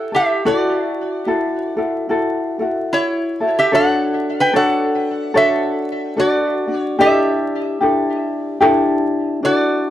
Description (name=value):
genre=Hawaiian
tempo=73 BPM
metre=4/4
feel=swing 62% on 8ths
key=D major, B minor from 3.7 s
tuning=A4 = 444 Hz
part: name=lap resonator guitar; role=melody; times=0.0-9.9 s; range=E4 to G5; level=-18 LUFS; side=right 1 dB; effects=plate reverb, tape echo
part: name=ukulele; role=accompaniment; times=0.0-9.9 s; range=D4 to C#5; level=-18 LUFS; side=left 2 dB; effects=plate reverb
room=wet studio reverb, RT60 0.6 s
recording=vinyl crackle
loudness=-15 LUFS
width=side -12 dB against mid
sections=0.0-3.7 A section; 3.7-9.9 B section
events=none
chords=0.4 Dadd9; 3.7 Bm9 (rootless); 7.0 Em11